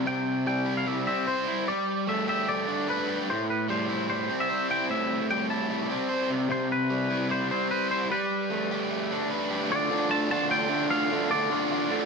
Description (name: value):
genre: rock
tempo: 150 BPM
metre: 4/4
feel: straight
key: unclear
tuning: A4 = 439 Hz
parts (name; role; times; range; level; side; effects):
- raw garage guitar; riff; 0.0-12.1 s; A2 to C5; -26 LUFS; equal; overdrive
- twangy electric guitar; melody; 0.1-12.1 s; B4 to A5; -30 LUFS; left 1 dB; wide subtle chorus, digital delay
room: light reverb, digital ambience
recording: none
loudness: -25 LUFS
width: side -4 dB against mid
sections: 0.0-9.7 A section; 9.7-12.1 B section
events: none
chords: 0.0 C; 1.7 Gadd9; 3.3 Am7; 6.3 C; 8.1 Gadd9; 9.7 Dm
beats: | 0.07 0.47 0.88 1.28 | 1.68 2.08 2.48 2.89 | 3.29 3.69 4.09 4.49 | 4.89 5.29 5.70 6.10 | 6.50 6.90 7.30 7.70 | 8.11 8.51 8.91 9.31 | 9.71 10.11 10.51 10.91 | 11.31 11.71